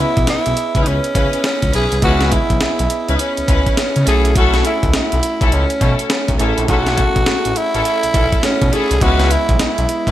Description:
R&B, new jack swing; 103 BPM; 4/4; swing 63% on 16ths; C# minor; A4 = 440 Hz
growling tenor saxophone; melody; 0.0-10.1 s; C#4 to G#4; -18 LUFS; equal
soft electric-piano-like synth keys; accompaniment; 0.0-10.1 s; G#3 to D#5; -24 LUFS; right 4 dB; chorus, tremolo
smooth synth bass; bass; 0.0-10.1 s; A1 to C#3; -18 LUFS; equal
breakbeat sampler-style drum kit; drums; 0.2-10.1 s; hi-hat, kick drum, snare drum; -18 LUFS; equal; gated reverb
dark symphonic string section; stabs; 0.7-10.1 s; C#4 to B4; -23 LUFS; left 4 dB
light reverb; bright 1980s-style digital production; -13 LUFS; side -13 dB against mid
0.0-10.1 A section
0.0 C#m7; 4.1 B9sus4; 9.0 C#m7
0.28 0.86 1.44 | 2.02 2.61 3.19 3.77 | 4.36 4.94 5.52 6.10 | 6.68 7.27 7.85 8.43 | 9.02 9.60

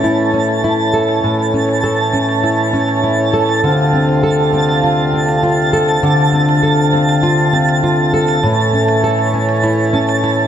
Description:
folktronica; 100 BPM; 4/4; straight; A4 = 441 Hz
pedal harmonium; sustained chords; 0.0-10.5 s; D2 to F4; -18 LUFS; equal
nylon-string guitar; arpeggios; 0.0-10.5 s; A2 to A4; -14 LUFS; equal; digital delay
electronic hi-hat; drums; 0.0-10.4 s; -43 LUFS; right 2 dB
twinkling granular texture; texture; 0.0-10.5 s; A5; -18 LUFS; right 2 dB; built-in reverb
moderate echo chamber reverb, RT60 2.6 s; -12 LUFS; side -9 dB against mid
0.0-10.5 A section
0.0 A; 3.6 Dm7; 8.4 A
0.04 0.64 | 1.24 1.84 2.44 3.04 | 3.64 4.24 4.84 5.44 | 6.04 6.64 7.24 7.84 | 8.44 9.04 9.64 10.24

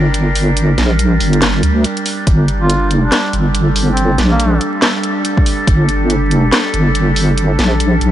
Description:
deep dubstep; 141 BPM; 4/4; swing 59% on 16ths, half-time; G minor; A4 = 440 Hz
overtone-sweeping drone; sustained chords; 0.0-8.1 s; G3 to Bb4; -18 LUFS; right 1 dB; chorus, built-in reverb
deep soft wobble bass; bass; 0.0-8.1 s; G1 to D2; -13 LUFS; equal; chorus
garage drum kit; drums; 0.1-8.1 s; handclaps, hi-hat, snare drum; -18 LUFS; equal; studio reverb
electronic kick drum; drums; 2.3-2.4, 5.4-5.8 s; -13 LUFS; equal; overdrive, studio reverb
warm duduk; melody; 2.6-4.6 s; Bb3 to F4; -22 LUFS; equal; dub echo
little or no reverb; vinyl crackle, nothing above 10.9 kHz; -11 LUFS; side -12 dB against mid
0.0-8.1 A section
break 1.8-2.3
0.0 G5
0.14 | 0.57 0.99 1.42 1.84 | 2.27 2.69 3.12 3.55 | 3.97 4.40 4.82 5.25 | 5.67 6.10 6.52 6.95 | 7.38 7.80

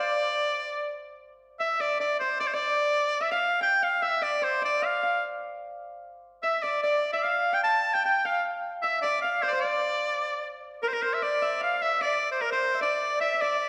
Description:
medieval dance; 150 BPM; 3/4; straight; D minor; A4 = 441 Hz
bright shawm; melody; 0.0-13.7 s; Bb4 to A5; -28 LUFS; equal
Celtic harp; second line; 0.0-13.7 s; Bb4 to A5; -35 LUFS; equal
tenor recorder; second line; 0.0-0.9, 6.4-13.7 s; Bb4 to A5; -36 LUFS; equal
wet recital hall reverb, RT60 1.5 s; recorded in a church or concert hall; -27 LUFS; mono
0.0-1.2 A section; 1.2-10.8 A section; 10.8-13.7 B section
0.38 0.79 | 1.19 1.60 2.00 | 2.41 2.81 3.21 | 3.62 4.02 4.42 | 4.83 5.23 5.63 | 6.03 6.43 6.83 | 7.23 7.63 8.03 | 8.43 8.83 9.23 | 9.63 10.03 10.43 | 10.82 11.22 11.62 | 12.01 12.41 12.81 | 13.20 13.60

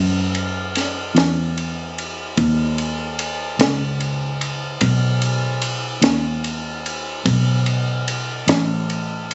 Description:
slow blues; 49 BPM (dotted quarters); 12/8; straight; A4 = 442 Hz
vintage muted fingered electric bass; bass; 0.0-9.3 s; A1 to F#2; -23 LUFS; equal
compact cocktail drum kit; drums; 0.3-9.3 s; kick drum, ride cymbal, snare drum; -24 LUFS; equal
little or no reverb; recorded on a phone in the room, club reverb, compression, nothing above 8.0 kHz; -21 LUFS; mono
0.0-9.3 A section
1.16 | 2.38 3.60 4.82 6.04 | 7.26 8.49

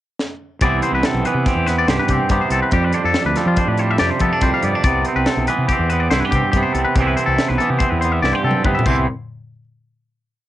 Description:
math rock and midwest emo; 142 BPM; 5/4; straight; C major; A4 = 440 Hz
crisp fusion drum kit; drums; 0.2-9.0 s; crash cymbal, hi-hat, kick drum, snare drum, toms; -22 LUFS; left 1 dB; cassette tape
twangy electric guitar; accompaniment; 0.6-9.1 s; F2 to G4; -20 LUFS; right 5 dB; cassette tape
twangy electric guitar; arpeggios; 0.6-9.1 s; F4 to F5; -20 LUFS; left 5 dB; cassette tape
fuzz fingered electric bass; bass; 0.6-9.1 s; B1 to F3; -21 LUFS; left 1 dB; overdrive
little or no reverb; home recording on cassette, nothing above 10.6 kHz; -15 LUFS; side -13 dB against mid
0.0-0.6 pickup bar; 0.6-9.1 A section; 9.1-10.5 final hit
drum fill 0.2-0.6, 8.2-9.1
0.0 N.C.; 0.6 Cmaj7; 2.7 F69; 4.8 Cmaj7; 9.1 N.C.
0.20 | 0.62 1.04 1.47 1.89 2.31 | 2.74 3.16 3.58 4.01 4.43 | 4.85 5.27 5.69 6.12 6.54 | 6.96 7.38 7.80 8.22 8.64 | 9.07

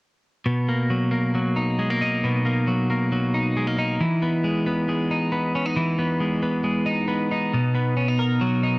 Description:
indie pop; 136 BPM; 4/4; straight; A4 = 440 Hz
twelve-string electric guitar; solo; 0.5-8.8 s; B2 to A#4; -20 LUFS; equal
light reverb, digital ambience; cassette tape; -20 LUFS; side -24 dB against mid
0.5-7.5 A section; 7.5-8.8 B section
0.5 Bmaj7; 4.0 Emaj7; 7.5 Bmaj7
| 0.46 0.90 1.35 1.79 | 2.23 2.67 3.12 3.56 | 4.00 4.44 4.88 5.33 | 5.77 6.21 6.65 7.09 | 7.53 7.98 8.42

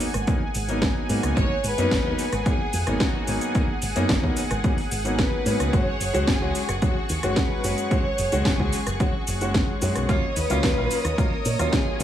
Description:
nu-disco, nu disco; 110 BPM; 4/4; straight; G# minor; A4 = 441 Hz
warm grand piano; accompaniment; 0.0-12.0 s; F#3 to F#4; -28 LUFS; left 1 dB; sidechain pumping, dub echo
lush unison pad; sustained chords; 0.0-12.0 s; G#4 to D#6; -32 LUFS; equal; chorus, sidechain pumping
house drum kit; drums; 0.0-12.0 s; hi-hat, rim click, shaker, snare drum; -29 LUFS; equal; overdrive
fingered electric bass with an envelope filter; bass; 0.1-12.0 s; F#1 to A#2; -27 LUFS; right 1 dB
electronic kick drum; drums; 0.3-11.8 s; -25 LUFS; equal; overdrive
dark chamber violin section; melody; 1.4-12.0 s; F#4 to C#5; -30 LUFS; left 2 dB; dub echo
digital ambience; studio ambience; -21 LUFS; side -11 dB against mid
0.0-12.0 A section
0.0 G#m7; 5.7 F#sus2; 10.1 D#m7
0.28 0.82 | 1.37 1.91 2.46 3.00 | 3.55 4.09 4.64 5.18 | 5.73 6.28 6.82 7.37 | 7.91 8.46 9.00 9.55 | 10.09 10.64 11.18 11.73

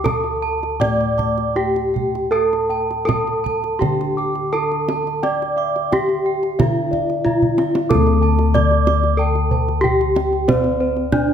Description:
Javanese gamelan; 79-93 BPM; 4/4; straight; D slendro; A4 = 440 Hz
gamelan-type bronze metallophone; melody; 0.0-11.3 s; C4-40c to D5; -20 LUFS; left 1 dB
gamelan-type bossed gongs; arpeggios; 0.0-11.3 s; C5-40c to D6; -27 LUFS; left 2 dB
gamelan-type bronze metallophone; arpeggios; 0.0-11.3 s; C5-40c to D6; -25 LUFS; right 8 dB
gamelan-type bossed gongs; bass; 0.0-11.3 s; D2 to D5; -21 LUFS; left 1 dB
kendang; percussion; 0.1-11.3 s; -23 LUFS; right 3 dB
moderate recital hall reverb, RT60 1.6 s; -16 LUFS; side -8 dB against mid
0.0-7.9 A section; 7.9-11.3 B section
drum fill 7.3-7.9
0.05 0.81 1.56 | 2.33 3.08 3.81 4.53 | 5.23 5.92 6.60 7.26 | 7.91 8.55 9.20 9.84 | 10.49 11.13

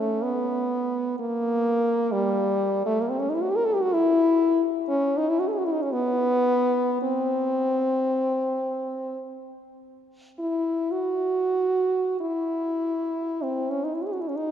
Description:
classical, free, expressive piece for unaccompanied French horn; 48-66 BPM; 3/4; rubato; A4 = 441 Hz
warm French horn; solo; 0.0-14.5 s; G3 to A#4; -22 LUFS; equal
wet church reverb, RT60 3.4 s; -22 LUFS; side -9 dB against mid
0.0-14.5 A section
0.23 | 1.19 2.10 3.02 | 3.94 4.88 5.91 | 7.01 8.13 9.23 | 10.39 11.44 12.45 | 13.41 14.37

